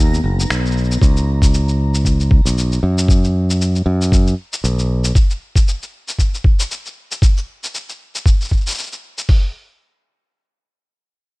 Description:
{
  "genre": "folktronica",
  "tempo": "116 BPM",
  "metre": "4/4",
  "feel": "swing 56% on 16ths",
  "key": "B major",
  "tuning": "A4 = 438 Hz",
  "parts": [
    { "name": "warm analog pad", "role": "sustained chords", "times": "0.0-1.0 s", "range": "B3 to D#4", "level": "-28 LUFS", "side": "left 2 dB", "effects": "chorus" },
    { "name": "modern bright fingered electric bass", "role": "bass", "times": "0.0-5.1 s", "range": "F#1 to F#2", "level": "-16 LUFS", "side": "equal", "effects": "none" },
    { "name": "backwards swelling texture", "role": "texture", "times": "0.0-1.0 s", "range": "A#5 to A#6", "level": "-34 LUFS", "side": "right 2 dB", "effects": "built-in reverb" },
    { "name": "electronic shaker and finger snaps", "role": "drums", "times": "0.1-9.3 s", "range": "none", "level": "-24 LUFS", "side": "left 2 dB", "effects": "none" },
    { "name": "lo-fi sampler-style drum kit", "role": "drums", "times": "1.0-9.4 s", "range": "hi-hat, kick drum", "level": "-13 LUFS", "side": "equal", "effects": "none" }
  ],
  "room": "digital ambience",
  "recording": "none",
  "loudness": "-14 LUFS",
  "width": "side -24 dB against mid",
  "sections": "0.0-9.3 A section; 9.3-11.4 B section",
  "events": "none",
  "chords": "0.0 Bmaj7; 1.0 Bsus2; 5.2 N.C."
}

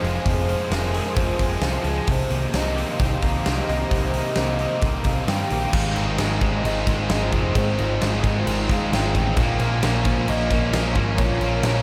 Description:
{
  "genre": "rock, shoegaze and dream pop",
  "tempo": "132 BPM",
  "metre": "4/4",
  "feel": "straight",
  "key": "unclear",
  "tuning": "A4 = 440 Hz",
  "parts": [
    { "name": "hollow clarinet-like synth lead", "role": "melody", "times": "0.0-11.8 s", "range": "Bb4 to G5", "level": "-32 LUFS", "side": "equal", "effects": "chorus, tape echo" },
    { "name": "dark analog pad", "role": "sustained chords", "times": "0.0-11.8 s", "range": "F4 to C6", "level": "-35 LUFS", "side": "equal", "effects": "chorus" },
    { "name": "direct-recorded clean electric guitar", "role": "arpeggios", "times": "0.0-11.8 s", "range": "Eb3 to Ab4", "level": "-37 LUFS", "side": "equal", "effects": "none" },
    { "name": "overdriven electric guitar", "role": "riff", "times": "0.0-11.8 s", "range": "F2 to F4", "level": "-32 LUFS", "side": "equal", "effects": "reverse reverb" },
    { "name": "thick fuzz guitar", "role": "riff", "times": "0.0-11.8 s", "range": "F2 to Ab4", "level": "-31 LUFS", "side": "equal", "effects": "distortion, ensemble chorus" },
    { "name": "growling picked electric bass", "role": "bass", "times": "0.0-11.8 s", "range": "F1 to G2", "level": "-28 LUFS", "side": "equal", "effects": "overdrive" },
    { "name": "huge arena drum kit", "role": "drums", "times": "0.0-11.7 s", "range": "crash cymbal, hi-hat, kick drum, snare drum", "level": "-27 LUFS", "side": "equal", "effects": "none" },
    { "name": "tight distorted guitar", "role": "riff", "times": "5.7-11.8 s", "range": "Ab2 to Bb3", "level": "-33 LUFS", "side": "equal", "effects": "distortion" }
  ],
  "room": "moderate huge ambient reverb, RT60 7.8 s",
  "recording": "dreamy mix soaked in reverb",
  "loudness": "-22 LUFS",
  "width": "mono",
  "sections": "0.0-5.7 A section; 5.7-11.8 B section",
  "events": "none",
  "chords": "0.0 Fm; 2.1 Cm7; 5.7 Ab6; 9.4 Bbm"
}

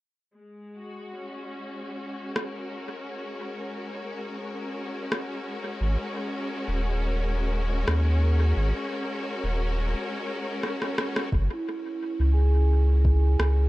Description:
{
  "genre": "ambient dub",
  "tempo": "87 BPM",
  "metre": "4/4",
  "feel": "straight",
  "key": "unclear",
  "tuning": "A4 = 440 Hz",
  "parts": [
    { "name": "clear studio string section", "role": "sustained chords", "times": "0.4-13.7 s", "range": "G#3 to A#4", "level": "-32 LUFS", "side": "left 1 dB", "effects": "low-pass filter" },
    { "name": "electronic rim click", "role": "drums", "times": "2.4-13.5 s", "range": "none", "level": "-31 LUFS", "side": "equal", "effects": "overdrive, dub echo" },
    { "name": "warm sub bass", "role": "bass", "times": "5.8-13.7 s", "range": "D#1 to D#2", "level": "-22 LUFS", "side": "equal", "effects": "none" },
    { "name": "electronic kick drum", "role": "drums", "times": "11.3-13.2 s", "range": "none", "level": "-25 LUFS", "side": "equal", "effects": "overdrive" },
    { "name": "vibraphone with medium hard mallets", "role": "arpeggios", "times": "11.5-13.7 s", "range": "E4 to G#5", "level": "-31 LUFS", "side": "right 3 dB", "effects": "low-pass filter, dub echo" }
  ],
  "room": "digital ambience",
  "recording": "echo-heavy mix, nothing above 10.4 kHz",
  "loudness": "-25 LUFS",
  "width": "side -18 dB against mid",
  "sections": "0.3-11.3 A section; 11.3-13.7 B section",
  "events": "drum fill 10.6-11.3; filter sweep on vibraphone 11.3-13.7",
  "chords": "0.3 F#add9; 5.8 G#sus2; 11.3 F#9"
}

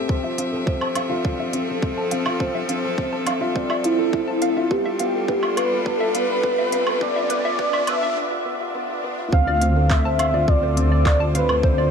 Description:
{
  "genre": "piano and strings electronica",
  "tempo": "104 BPM",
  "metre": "4/4",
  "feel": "straight",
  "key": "D dorian",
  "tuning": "A4 = 442 Hz",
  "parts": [
    { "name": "warm velvety synth lead", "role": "melody", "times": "0.0-11.9 s", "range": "E4 to F5", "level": "-23 LUFS", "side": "equal", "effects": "chorus, shimmer reverb" },
    { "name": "clear string quartet", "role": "sustained chords", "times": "0.0-11.9 s", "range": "D3 to E5", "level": "-30 LUFS", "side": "left 1 dB", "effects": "sidechain pumping, shimmer reverb" },
    { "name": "felt-muted upright piano", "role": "riff", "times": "0.0-11.9 s", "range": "B3 to C5", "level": "-26 LUFS", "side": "left 2 dB", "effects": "shimmer reverb" },
    { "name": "warbly dusty pluck", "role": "arpeggios", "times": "0.1-11.8 s", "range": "B4 to A5", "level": "-30 LUFS", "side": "right 2 dB", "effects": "chorus, sidechain pumping, tape echo, shimmer reverb" },
    { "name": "electronic kick drum", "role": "drums", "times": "0.1-11.8 s", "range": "none", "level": "-22 LUFS", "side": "right 1 dB", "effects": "none" },
    { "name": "riser and swell", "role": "sound effects", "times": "1.5-9.3 s", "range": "none", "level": "-35 LUFS", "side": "equal", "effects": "none" },
    { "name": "organic electronic drum kit", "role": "drums", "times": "0.4-11.6 s", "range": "handclaps, hi-hat, woodblock", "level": "-28 LUFS", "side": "right 2 dB", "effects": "none" },
    { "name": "dark detuned saw bass", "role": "bass", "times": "9.3-11.9 s", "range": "D2", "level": "-20 LUFS", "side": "right 1 dB", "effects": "sidechain pumping" }
  ],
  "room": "moderate huge ambient reverb, RT60 6.4 s",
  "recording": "dark, warm production, high-pass filter",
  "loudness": "-19 LUFS",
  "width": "side -6 dB against mid",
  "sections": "0.0-9.3 A section; 9.3-11.9 B section",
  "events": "build-up 0.0-9.3; filter sweep on synth arpeggio sound 0.0-9.3; filter sweep on soft synth lead 0.0-9.3; riser 1.5-8.2; break 8.2-9.3; swell 8.2-9.3; drop 9.3-11.9",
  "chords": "0.1 Fmaj7; 4.7 G7; 9.3 Dm7"
}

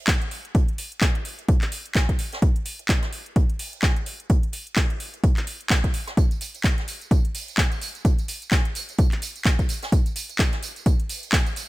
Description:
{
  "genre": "house",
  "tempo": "128 BPM",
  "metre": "4/4",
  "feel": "swing 58% on 16ths",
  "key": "none",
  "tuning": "none",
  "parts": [
    { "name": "electronic kick drum", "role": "drums", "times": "0.1-11.4 s", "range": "none", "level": "-20 LUFS", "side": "equal", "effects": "none" },
    { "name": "house drum kit", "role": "drums", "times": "0.1-11.7 s", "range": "handclaps, hi-hat, tambourine", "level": "-28 LUFS", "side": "equal", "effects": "overdrive" },
    { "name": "jazz brush drum kit", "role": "drums", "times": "0.1-11.7 s", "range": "hi-hat, snare drum", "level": "-36 LUFS", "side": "right 1 dB", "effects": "sidechain pumping on hats, high-pass filter on hats, high-pass filter on snare, high-pass filter on room" }
  ],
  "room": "little or no reverb",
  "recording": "none",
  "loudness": "-21 LUFS",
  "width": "side -19 dB against mid",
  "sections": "0.0-11.7 A section",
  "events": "none",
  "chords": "none"
}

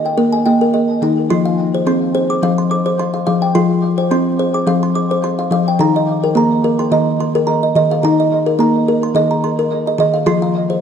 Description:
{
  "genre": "world meditative",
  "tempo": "107 BPM",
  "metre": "4/4",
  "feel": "swing 54% on 16ths",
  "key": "unclear",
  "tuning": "A4 = 440 Hz",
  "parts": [
    { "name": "kalimba", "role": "arpeggios", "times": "0.0-10.8 s", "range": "Eb3 to D6", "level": "-13 LUFS", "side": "equal", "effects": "diffuse ambient delay" }
  ],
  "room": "wet echo chamber reverb, RT60 1.9 s, small room ambience",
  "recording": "dark, warm production",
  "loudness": "-13 LUFS",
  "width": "side -8 dB against mid",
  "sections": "0.0-1.3 A section; 1.3-10.8 B section",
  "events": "none",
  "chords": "0.0 Eb; 1.3 F5; 5.8 Eb5; 10.3 F5"
}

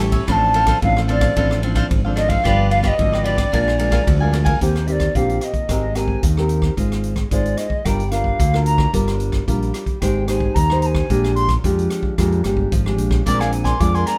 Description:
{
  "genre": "samba and choro",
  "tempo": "111 BPM",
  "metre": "4/4",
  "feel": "straight",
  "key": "Eb major from 4.6 s",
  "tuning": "A4 = 439 Hz",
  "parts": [
    { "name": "cavaquinho", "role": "accompaniment", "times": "0.0-4.6, 13.3-14.2 s", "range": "D4 to Ab5", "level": "-28 LUFS", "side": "equal", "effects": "none" },
    { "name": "nylon-string guitar", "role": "accompaniment", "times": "0.0-14.2 s", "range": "F2 to C5", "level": "-26 LUFS", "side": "equal", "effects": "none" },
    { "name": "modern bright fingered electric bass", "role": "bass", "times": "0.0-14.0 s", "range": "G1 to F2", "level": "-22 LUFS", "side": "equal", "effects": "none" },
    { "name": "swinging big-band drum kit", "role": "drums", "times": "0.1-14.2 s", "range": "hi-hat, kick drum, ride cymbal, rim click", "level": "-25 LUFS", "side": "equal", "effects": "none" },
    { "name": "wooden flute", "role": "melody", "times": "0.3-14.2 s", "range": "C5 to D6", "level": "-24 LUFS", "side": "equal", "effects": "none" }
  ],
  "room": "moderate studio reverb, RT60 0.8 s",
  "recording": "none",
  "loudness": "-18 LUFS",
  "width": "mono",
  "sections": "0.0-4.6 A section; 4.6-14.2 B section",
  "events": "flute solo 4.6-14.2",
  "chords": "0.3 Dm7/A; 2.4 G7; 3.5 Bb7; 4.6 Eb6; 5.7 Abmaj9; 6.8 Fm7/Ab; 7.9 Gm7; 10.0 Abmaj7; 11.1 Bb6; 13.3 Bb9"
}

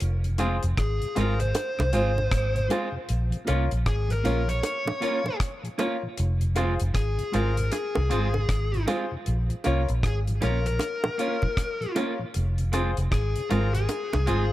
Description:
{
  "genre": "roots reggae",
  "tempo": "78 BPM",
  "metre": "4/4",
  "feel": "swing 62% on 16ths",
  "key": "Bb minor",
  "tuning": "A4 = 439 Hz",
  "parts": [
    { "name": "vintage muted fingered electric bass", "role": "bass", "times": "0.0-14.5 s", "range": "F1 to C2", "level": "-25 LUFS", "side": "equal", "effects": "none" },
    { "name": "deep reggae drum kit", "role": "drums", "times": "0.0-14.5 s", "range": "hi-hat, kick drum, rim click", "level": "-30 LUFS", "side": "equal", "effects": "none" },
    { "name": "mellow tonewheel organ", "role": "accompaniment", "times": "0.2-14.4 s", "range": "F2 to F4", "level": "-35 LUFS", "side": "left 1 dB", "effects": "chorus vibrato, slow rotary speaker" },
    { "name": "clean electric guitar", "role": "accompaniment", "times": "0.4-14.4 s", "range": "Ab3 to F4", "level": "-34 LUFS", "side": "right 6 dB", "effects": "tape echo" },
    { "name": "clear concert grand piano", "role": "stabs", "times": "0.4-14.5 s", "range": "F4 to Db5", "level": "-33 LUFS", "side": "left 4 dB", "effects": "none" },
    { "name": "bongos", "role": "percussion", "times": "0.4-14.3 s", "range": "none", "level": "-30 LUFS", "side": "right 3 dB", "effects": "none" },
    { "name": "fuzz lead guitar", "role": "melody", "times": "0.8-14.5 s", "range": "Ab4 to Db5", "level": "-30 LUFS", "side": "left 2 dB", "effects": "distortion, tape echo" }
  ],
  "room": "studio reverb",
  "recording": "none",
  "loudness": "-23 LUFS",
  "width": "side -15 dB against mid",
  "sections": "0.0-14.5 A section",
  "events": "none",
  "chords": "0.0 Fm; 3.1 Bbm; 6.2 Fm; 9.3 Bbm; 12.3 Fm"
}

